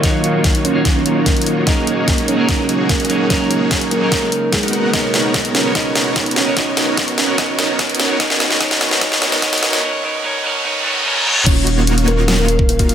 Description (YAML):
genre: future bass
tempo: 147 BPM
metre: 4/4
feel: half-time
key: Eb minor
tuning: A4 = 440 Hz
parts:
  - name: kalimba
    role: melody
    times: 0.0-12.9 s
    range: Ab3 to Eb5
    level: -20 LUFS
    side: right 3 dB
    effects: sidechain pumping, low-pass filter, tape echo
  - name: clean electric guitar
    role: accompaniment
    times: 0.0-11.5 s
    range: B2 to F5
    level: -23 LUFS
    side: right 1 dB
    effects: sidechain pumping, tape echo
  - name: airy breathy pad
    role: sustained chords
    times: 0.0-12.9 s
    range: Db3 to F5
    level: -28 LUFS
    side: left 1 dB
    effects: none
  - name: dense compressed supersaw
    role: riff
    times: 0.0-12.9 s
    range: Bb3 to Gb5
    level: -20 LUFS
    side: equal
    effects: sidechain pumping, low-pass filter
  - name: long sustained 808-style bass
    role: bass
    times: 0.0-12.9 s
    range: Eb1 to B1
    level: -20 LUFS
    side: equal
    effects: sidechain pumping, high-pass filter
  - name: dubstep drum kit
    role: drums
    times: 0.0-12.9 s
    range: crash cymbal, hi-hat, snare drum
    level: -18 LUFS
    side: left 1 dB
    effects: high-pass filter on snare, high-pass filter on hats, high-pass filter on cymbals
  - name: electronic kick drum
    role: drums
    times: 0.0-12.9 s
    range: none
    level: -18 LUFS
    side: equal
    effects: none
  - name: riser and reverse cymbal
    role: sound effects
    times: 3.0-11.5 s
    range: none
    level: -23 LUFS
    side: equal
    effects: none
room: moderate digital room reverb, RT60 1.1 s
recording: high-pass filter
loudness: -13 LUFS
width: side -9 dB against mid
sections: 0.0-11.5 A section; 11.5-12.9 B section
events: build-up 0.0-11.5; drum fill 0.0-9.8; filter sweep on supersaw synth 0.0-11.5; filter sweep on kalimba 0.0-11.5; filter sweep 0.0-11.5; reverse cymbal 10.7-11.5; drop 11.5-12.9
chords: 0.0 Ebm9; 1.7 Gb69; 4.7 Bmaj9; 8.0 Abm7; 11.5 Ebm9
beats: | 0.04 0.45 0.85 1.26 | 1.67 2.08 2.49 2.89 | 3.30 3.71 4.12 4.53 | 4.93 5.34 5.75 6.16 | 6.57 6.98 7.38 7.79 | 8.20 8.61 9.02 9.43 | 9.83 10.24 10.65 11.06 | 11.47 11.87 12.28 12.69